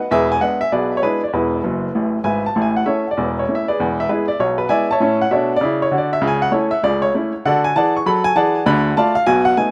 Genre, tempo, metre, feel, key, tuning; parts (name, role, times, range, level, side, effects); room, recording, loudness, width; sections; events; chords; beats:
jazz, stride piano; 197 BPM; 4/4; swing 62% on 8ths; A major; A4 = 440 Hz
clear baby grand piano; solo; 0.0-9.7 s; E1 to C#6; -18 LUFS; equal; tape echo
moderate studio reverb, RT60 0.5 s; rough home demo mix; -18 LUFS; mono
0.0-2.6 A section; 2.6-9.7 A section
grand piano fill 1.6-2.6
0.1 E7; 1.3 E; 2.6 A; 3.8 E7; 5.0 A; 6.2 A/C#; 7.4 D; 8.7 Dm
| 0.11 0.42 0.72 1.03 | 1.33 1.64 1.95 2.25 | 2.56 2.86 3.17 3.47 | 3.78 4.08 4.39 4.69 | 5.00 5.30 5.61 5.91 | 6.22 6.52 6.83 7.13 | 7.44 7.74 8.05 8.35 | 8.66 8.96 9.27 9.58